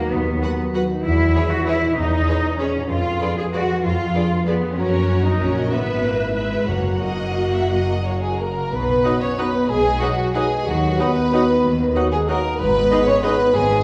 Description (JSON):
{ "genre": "classical", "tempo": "168-208 BPM", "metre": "3/4", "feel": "rubato", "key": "B major", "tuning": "A4 = 440 Hz", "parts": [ { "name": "concert harp", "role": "arpeggios", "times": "0.0-13.8 s", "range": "E2 to G#5", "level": "-28 LUFS", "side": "equal", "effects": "none" }, { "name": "rich studio cello section", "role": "bass", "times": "0.0-13.8 s", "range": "G#2 to Ab4", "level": "-27 LUFS", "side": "equal", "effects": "none" }, { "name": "clear studio double bass section", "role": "bass", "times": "0.1-13.8 s", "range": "F#1 to F#2", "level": "-27 LUFS", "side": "equal", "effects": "none" }, { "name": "rich studio violin section", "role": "melody", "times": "0.4-13.3 s", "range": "C#5 to F#5", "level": "-36 LUFS", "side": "equal", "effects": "none" }, { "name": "clear studio violin section", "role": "second line", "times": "0.4-13.8 s", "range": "F#4 to E5", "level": "-26 LUFS", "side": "equal", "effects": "none" }, { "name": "rich studio viola section", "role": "accompaniment", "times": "0.4-13.3 s", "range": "D#4 to B4", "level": "-29 LUFS", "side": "equal", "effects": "none" }, { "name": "timpani", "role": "percussion", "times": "6.7-7.2 s", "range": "F#2", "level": "-30 LUFS", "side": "equal", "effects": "none" }, { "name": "mellow clarinet", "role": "second line", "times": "8.2-13.8 s", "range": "F#4 to C#5", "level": "-28 LUFS", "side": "equal", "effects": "none" }, { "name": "mellow silver concert flute", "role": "second line", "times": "8.2-13.8 s", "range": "F#5 to C#6", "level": "-29 LUFS", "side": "equal", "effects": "none" }, { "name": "mellow French horn section", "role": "sustained chords", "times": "8.2-13.8 s", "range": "F#3 to C#4", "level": "-26 LUFS", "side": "equal", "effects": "none" }, { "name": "clear oboe", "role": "second line", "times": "9.0-13.3 s", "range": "D#5", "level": "-32 LUFS", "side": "equal", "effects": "none" }, { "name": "mellow bassoon", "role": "accompaniment", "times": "9.0-13.3 s", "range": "F#3 to G#3", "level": "-30 LUFS", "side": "equal", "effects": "none" } ], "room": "wet recital hall reverb, RT60 1.5 s", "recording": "heard from further back in the room", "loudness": "-20 LUFS", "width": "mono", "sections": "0.0-8.7 A section; 8.7-13.8 B section", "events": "none", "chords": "0.0 B/D#; 1.0 C#m7/E; 2.9 Fdim7; 4.8 F#; 5.7 E/G#; 6.7 F#; 8.7 B; 10.7 B/D#; 12.6 G#m" }